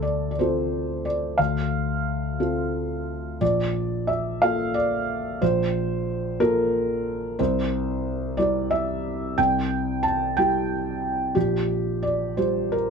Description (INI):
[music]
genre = neoclassical minimalist piano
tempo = 60 BPM (dotted quarters)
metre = 6/8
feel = rubato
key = D minor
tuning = A4 = 439 Hz
[part]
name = felt-muted upright piano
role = solo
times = 0.0-12.9 s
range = Bb1 to A5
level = -22 LUFS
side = equal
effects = none
[sound]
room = moderate small room reverb, RT60 0.5 s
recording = dark, warm production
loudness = -22 LUFS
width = side -6 dB against mid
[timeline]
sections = 0.0-12.9 A section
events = none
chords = 0.0 Dm7; 3.4 Bbmaj7; 7.4 C; 11.4 Gm7/Bb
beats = 0.37 | 1.39 2.39 | 3.41 4.41 | 5.41 6.40 | 7.39 8.38 | 9.38 10.36 | 11.35 12.37